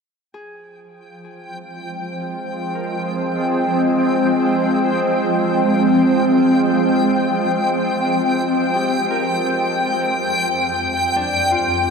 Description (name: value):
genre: ambient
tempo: 50 BPM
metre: 4/4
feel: straight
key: F dorian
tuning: A4 = 440 Hz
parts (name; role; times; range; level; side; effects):
- Celtic harp; arpeggios; 0.3-11.9 s; D4 to Bb4; -32 LUFS; left 3 dB; ping-pong delay
- backwards swelling texture; texture; 0.3-11.9 s; G5; -24 LUFS; equal; built-in reverb
- shimmering ambient pad; sustained chords; 2.0-11.9 s; F2 to G5; -17 LUFS; equal; chorus, built-in reverb
room: wet huge ambient reverb, RT60 8.2 s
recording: none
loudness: -16 LUFS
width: side -5 dB against mid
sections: 0.4-11.9 A section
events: fade-in on harp 0.4-11.9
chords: 0.4 Fmadd9; 10.0 Gm/F